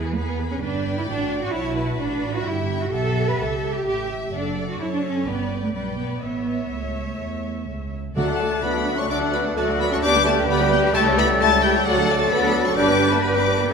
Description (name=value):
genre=quick classical-period movement for symphony orchestra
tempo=128 BPM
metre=4/4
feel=rubato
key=D major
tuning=A4 = 436 Hz
part: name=rich chamber violin section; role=melody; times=0.0-13.7 s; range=E5 to D6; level=-27 LUFS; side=left 6 dB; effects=none
part: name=rich chamber violin section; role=second line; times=0.0-13.7 s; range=F#4 to G5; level=-30 LUFS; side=left 5 dB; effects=none
part: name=rich chamber viola section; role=accompaniment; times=0.0-13.7 s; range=F#3 to E5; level=-28 LUFS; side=right 2 dB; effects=none
part: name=dark chamber double bass section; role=bass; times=0.0-13.7 s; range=F#1 to F#2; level=-27 LUFS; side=right 4 dB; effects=none
part: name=warm symphonic cello section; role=bass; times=0.0-13.7 s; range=E3 to B4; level=-26 LUFS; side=right 2 dB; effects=none
part: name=mellow hollow concert flute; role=second line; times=8.2-13.7 s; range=F#6 to A6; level=-27 LUFS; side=left 3 dB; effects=none
part: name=warm clarinet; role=second line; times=8.2-13.7 s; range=A4 to B4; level=-29 LUFS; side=left 4 dB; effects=none
part: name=warm cor anglais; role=second line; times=8.2-13.7 s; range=D5 to E5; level=-31 LUFS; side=equal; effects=none
part: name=mellow bassoon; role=accompaniment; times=8.2-13.7 s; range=F#3 to A3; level=-27 LUFS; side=right 2 dB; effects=none
part: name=clear French horn section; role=sustained chords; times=8.2-13.7 s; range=F#3 to D4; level=-25 LUFS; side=left 3 dB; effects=none
part: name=timpani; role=percussion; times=8.2-8.8 s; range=D3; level=-30 LUFS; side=right 1 dB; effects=none
room=wet concert hall reverb, RT60 2.1 s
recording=minimal, uncompressed stereo recording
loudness=-19 LUFS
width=side -5 dB against mid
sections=0.0-8.2 A section; 8.2-13.7 B section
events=none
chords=0.0 E; 0.6 G; 2.4 A7/G; 4.3 D/F#; 5.3 G; 6.2 A; 8.2 D; 10.0 G/D; 10.9 A7/C#; 11.9 D; 12.8 G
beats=0.16 | 0.61 1.07 1.52 1.98 | 2.45 2.92 3.38 3.85 | 4.32 4.79 5.26 5.73 | 6.22 6.71 7.20 7.68 | 8.16 8.63 9.11 9.57 | 10.03 10.48 10.94 11.40 | 11.85 12.31 12.77 13.24 | 13.71